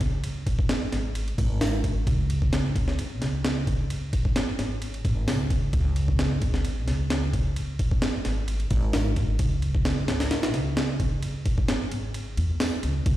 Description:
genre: breakbeat, breaks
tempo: 131 BPM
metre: 4/4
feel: straight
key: unclear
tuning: A4 = 440 Hz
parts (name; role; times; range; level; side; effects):
- upright bass; bass; 0.0-13.2 s; Ab1 to Fb2; -26 LUFS; equal; none
- breakbeat sampler-style drum kit; drums; 0.0-13.2 s; hi-hat, kick drum, ride cymbal, snare drum; -26 LUFS; equal; studio reverb
room: light reverb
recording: played on a big sound system in a bare room, large studio reverb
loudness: -23 LUFS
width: side -14 dB against mid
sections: 0.0-13.2 A section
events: kick drops out 12.1-13.1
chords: none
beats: | 0.24 0.69 1.15 1.61 | 2.07 2.53 2.98 3.44 | 3.90 4.36 4.82 5.28 | 5.73 6.19 6.65 7.11 | 7.57 8.02 8.48 8.94 | 9.40 9.86 10.31 10.77 | 11.23 11.69 12.14 12.60 | 13.06

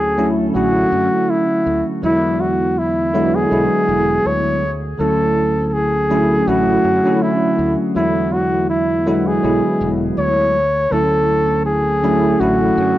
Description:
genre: vaporwave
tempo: 81 BPM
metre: 4/4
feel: swing 55% on 16ths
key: D lydian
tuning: A4 = 441 Hz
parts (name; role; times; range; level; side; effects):
- warm flugelhorn; melody; 0.0-13.0 s; E4 to C#5; -17 LUFS; equal; tape echo
- bell-like tine electric piano; accompaniment; 0.0-13.0 s; D3 to E4; -18 LUFS; equal; ensemble chorus
- fretless electric bass; bass; 0.0-12.9 s; E1 to F#2; -25 LUFS; equal; ensemble chorus
room: moderate studio ambience, RT60 0.5 s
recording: rough home demo mix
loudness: -14 LUFS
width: side -14 dB against mid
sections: 0.0-13.0 A section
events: none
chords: 0.0 Dmaj9; 2.0 E7; 4.6 Dmaj9; 8.0 E7; 10.6 Dmaj9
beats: 0.55 1.29 | 2.03 2.77 3.52 4.26 | 5.00 5.74 6.48 7.22 | 7.96 8.70 9.44 10.18 | 10.92 11.66 12.40

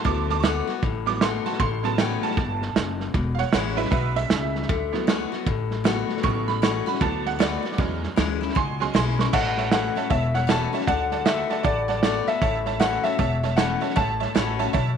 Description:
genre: rockabilly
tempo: 155 BPM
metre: 4/4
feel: swing 63% on 8ths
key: A major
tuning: A4 = 440 Hz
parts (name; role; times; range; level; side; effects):
- picked steel-string acoustic guitar; accompaniment; 0.0-15.0 s; E2 to F#4; -28 LUFS; left 14 dB; none
- tack piano; accompaniment; 0.0-14.9 s; C#3 to D6; -28 LUFS; right 10 dB; none
- vintage drum kit; drums; 0.0-14.9 s; crash cymbal, hi-hat, kick drum, snare drum; -25 LUFS; right 4 dB; none
- upright bass; bass; 0.1-15.0 s; E1 to E2; -28 LUFS; left 2 dB; none
- clear upright piano; melody; 9.3-15.0 s; D5 to A5; -26 LUFS; left 3 dB; none
room: moderate spring reverb, RT60 2.4 s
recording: 1960s-style stereo with parts hard left and right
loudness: -21 LUFS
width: side -7 dB against mid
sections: 0.0-9.3 A section; 9.3-15.0 B section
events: honky-tonk piano solo 0.0-9.3; drum fill 9.1; honky-tonk piano fill 14.7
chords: 0.0 D6; 1.6 A6; 3.2 E6; 4.7 D6; 6.2 A6; 7.0 D6; 7.8 E6; 9.3 A6; 10.9 D6; 12.4 A6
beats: | 0.06 0.44 0.83 1.22 | 1.60 1.99 2.38 2.76 | 3.15 3.54 3.92 4.31 | 4.70 5.08 5.47 5.86 | 6.24 6.63 7.01 7.40 | 7.79 8.17 8.56 8.95 | 9.33 9.72 10.11 10.49 | 10.88 11.27 11.65 12.04 | 12.42 12.81 13.20 13.58 | 13.97 14.36 14.74

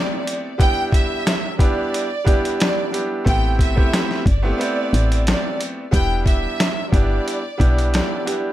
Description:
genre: hip hop, boom-bap hip-hop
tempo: 90 BPM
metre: 4/4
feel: swing 54% on 16ths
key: A minor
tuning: A4 = 440 Hz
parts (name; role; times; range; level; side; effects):
- rich studio violin section; melody; 0.0-8.2 s; D5 to G5; -25 LUFS; right 1 dB; tape echo
- bright upright piano; accompaniment; 0.0-8.5 s; G3 to G4; -24 LUFS; right 1 dB; cassette tape
- boom bap sampler-style drum kit; drums; 0.3-8.4 s; hi-hat, kick drum, rim click, snare drum; -19 LUFS; equal; none
- woody FM bass; bass; 3.3-8.0 s; E1 to B1; -19 LUFS; equal; none
room: light reverb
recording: none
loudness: -17 LUFS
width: side -14 dB against mid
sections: 0.0-8.5 A section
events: break 0.0-3.3, 4.6-5.9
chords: 0.0 Am9; 0.6 Em7; 3.3 Am9; 5.9 Em7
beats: | 0.60 1.26 1.93 2.60 | 3.26 3.93 4.60 5.26 | 5.93 6.60 7.26 7.93

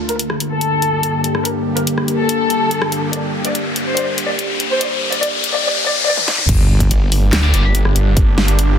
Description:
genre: heavy wobble dubstep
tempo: 143 BPM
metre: 4/4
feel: half-time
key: G minor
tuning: A4 = 442 Hz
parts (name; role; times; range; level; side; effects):
- evolving wavetable pad; sustained chords; 0.0-8.8 s; G2 to G4; -22 LUFS; left 1 dB; phaser, built-in reverb, sidechain pumping
- riser and sub drop; sound effects; 0.0-8.2 s; none; -22 LUFS; left 2 dB; none
- dark studio violin section; melody; 0.1-6.5 s; A4 to D5; -20 LUFS; left 2 dB; low-pass filter, ping-pong delay
- dubstep drum kit; drums; 0.1-8.7 s; crash cymbal, handclaps, hi-hat, rim click, snare drum, toms; -20 LUFS; left 1 dB; none
- wobble bass; bass; 6.5-6.9 s; G1; -14 LUFS; equal; chorus, overdrive
- electronic kick drum; drums; 6.5-8.3 s; none; -15 LUFS; equal; none
- snarling distorted saw bass; bass; 6.9-8.8 s; G1 to D2; -14 LUFS; equal; distortion, overdrive
- scooped high-gain guitar; stabs; 7.4-7.6 s; Bb3 to D5; -24 LUFS; left 3 dB; distortion, ping-pong delay
room: light reverb, digital ambience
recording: dense, heavily limited modern master, high-pass filter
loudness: -14 LUFS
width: side -8 dB against mid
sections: 0.0-6.5 A section; 6.5-8.8 B section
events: build-up 0.0-6.5; riser 0.0-6.5; filter sweep on ambient pad 0.0-6.5; filter sweep 0.0-6.5; drum fill 6.2-6.5; drop 6.5-8.8; impact 6.5-8.2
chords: 0.0 Gm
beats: 0.20 0.61 1.03 | 1.45 1.87 2.29 2.71 | 3.13 3.55 3.97 4.39 | 4.81 5.23 5.65 6.07 | 6.49 6.91 7.33 7.75 | 8.17 8.59

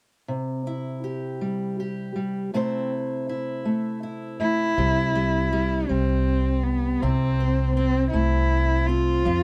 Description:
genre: folk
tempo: 54 BPM (dotted quarters)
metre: 6/8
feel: straight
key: C major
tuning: A4 = 440 Hz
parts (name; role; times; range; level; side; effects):
- fingerpicked steel-string acoustic guitar; accompaniment; 0.3-9.4 s; C3 to C5; -29 LUFS; equal; none
- warm cello; melody; 4.4-9.4 s; B3 to F4; -26 LUFS; equal; none
- upright bass; bass; 4.8-9.4 s; C2 to F2; -26 LUFS; equal; none
room: little or no reverb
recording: close, detailed microphones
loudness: -24 LUFS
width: mono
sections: 0.3-4.8 A section; 4.8-9.4 B section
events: none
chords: 0.3 C; 2.5 Am/C; 4.8 C; 7.0 Am/C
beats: | 0.28 1.40 | 2.52 3.65 | 4.77 5.89 | 7.01 8.13 | 9.25

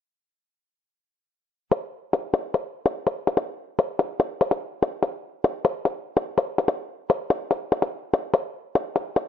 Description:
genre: hip hop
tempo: 145 BPM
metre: 4/4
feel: half-time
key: none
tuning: none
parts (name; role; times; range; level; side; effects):
- electronic hi-hat; drums; 1.7-9.3 s; none; -31 LUFS; left 4 dB; none
room: digital ambience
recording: bright 1980s-style digital production, low-pass filter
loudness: -23 LUFS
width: side -8 dB against mid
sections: 1.7-9.3 A section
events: kick muted 1.7-8.3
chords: none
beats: | 1.72 2.13 2.54 2.96 | 3.37 3.79 4.20 4.61 | 5.03 5.44 5.85 6.27 | 6.68 7.10 7.51 7.92 | 8.34 8.75 9.16

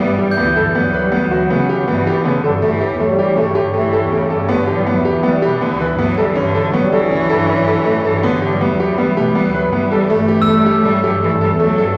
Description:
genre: contemporary instrumental, chamber music in an uneven meter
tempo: 160 BPM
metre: 5/4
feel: straight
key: G lydian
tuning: A4 = 440 Hz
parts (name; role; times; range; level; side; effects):
- rich cello; second line; 0.0-12.0 s; C#3 to A3; -21 LUFS; equal; none
- sweeping resonant pad; sustained chords; 0.0-12.0 s; E3 to D5; -24 LUFS; equal; chorus
- clear grand piano; arpeggios; 0.0-11.9 s; A3 to B4; -19 LUFS; equal; none
- rich double bass; bass; 0.0-11.9 s; A1 to G3; -23 LUFS; equal; none
- glockenspiel with brass mallets; texture; 0.3-0.9, 10.4-11.3 s; E6 to G6; -23 LUFS; equal; none
room: wet recital hall reverb, RT60 1.7 s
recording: vinyl crackle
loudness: -15 LUFS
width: mono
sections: 0.0-2.6 A section; 2.6-12.0 B section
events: none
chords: 0.0 Em7; 0.7 Gmaj7; 2.6 A7; 4.5 G6; 6.4 Dmaj7; 8.2 G6; 10.1 A7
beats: 0.37 | 0.74 1.12 1.49 1.87 2.24 | 2.62 2.99 3.37 3.74 4.12 | 4.49 4.87 5.24 5.62 5.99 | 6.36 6.74 7.11 7.49 7.86 | 8.23 8.61 8.98 9.36 9.73 | 10.10 10.48 10.85 11.22 11.60

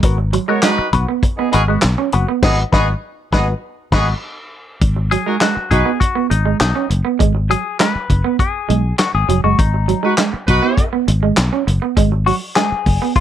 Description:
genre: funk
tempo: 100 BPM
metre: 4/4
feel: straight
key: G# minor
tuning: A4 = 439 Hz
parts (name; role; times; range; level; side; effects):
- semi-hollow electric guitar; accompaniment; 0.0-13.2 s; B3 to B4; -20 LUFS; left 7 dB; wah
- fingered electric bass; bass; 0.0-13.0 s; E#1 to B1; -16 LUFS; left 1 dB; none
- warm soul drum kit; drums; 0.0-13.2 s; crash cymbal, handclaps, hi-hat, kick drum, snare drum; -18 LUFS; equal; none
- electric guitar through a small old amp; riff; 0.2-13.1 s; F#3 to C#4; -19 LUFS; right 10 dB; none
- warm horn section; second line; 0.5-5.9, 10.0-10.9 s; B3 to C#5; -19 LUFS; right 1 dB; plate reverb
room: light reverb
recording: none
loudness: -14 LUFS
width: side -10 dB against mid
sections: 0.0-4.8 A section; 4.8-13.2 B section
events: break 2.4-4.8; band accent 2.4-4.8; clean electric guitar solo 4.8-13.2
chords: 0.0 G#m7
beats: | 0.03 0.63 1.23 1.82 | 2.42 3.02 3.62 4.21 | 4.81 5.41 6.01 6.60 | 7.20 7.80 8.39 8.99 | 9.59 10.18 10.78 11.37 | 11.97 12.56 13.16

